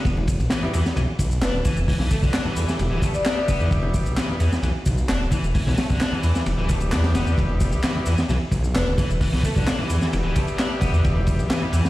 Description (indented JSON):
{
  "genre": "breakbeat, breaks",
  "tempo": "131 BPM",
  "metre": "4/4",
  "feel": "straight",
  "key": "E minor",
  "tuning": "A4 = 440 Hz",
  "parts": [
    { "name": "detuned saw bass", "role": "bass", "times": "0.1-11.8 s", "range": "D1 to E2", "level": "-22 LUFS", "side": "equal", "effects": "none" },
    { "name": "crunchy breakbeat drum kit", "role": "drums", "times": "0.1-11.9 s", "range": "hi-hat, kick drum, ride cymbal, snare drum", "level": "-23 LUFS", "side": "equal", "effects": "none" },
    { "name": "garage drum kit", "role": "drums", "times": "0.1-11.9 s", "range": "handclaps, ride cymbal, shaker", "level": "-34 LUFS", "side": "equal", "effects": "none" },
    { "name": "congas", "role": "percussion", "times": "0.2-11.7 s", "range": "none", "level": "-32 LUFS", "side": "left 2 dB", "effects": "none" },
    { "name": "overdriven electric guitar", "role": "riff", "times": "0.5-11.8 s", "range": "D3 to D4", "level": "-29 LUFS", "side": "left 1 dB", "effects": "tube saturation, tape echo" },
    { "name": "clear horn section", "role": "stabs", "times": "0.6-11.8 s", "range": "G3 to G4", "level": "-32 LUFS", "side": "left 1 dB", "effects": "vintage 12-bit sampler grit, tape echo" },
    { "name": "marimba with medium mallets", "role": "melody", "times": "1.4-4.0, 8.7-9.6 s", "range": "A4 to D5", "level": "-30 LUFS", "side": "left 2 dB", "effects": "old record sound, vintage 12-bit sampler grit, tape echo" }
  ],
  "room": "small room ambience",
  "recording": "played on a big sound system in a bare room, large studio reverb, vinyl crackle",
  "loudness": "-19 LUFS",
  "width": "side -16 dB against mid",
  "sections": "0.0-11.9 A section",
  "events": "none",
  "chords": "0.0 Em"
}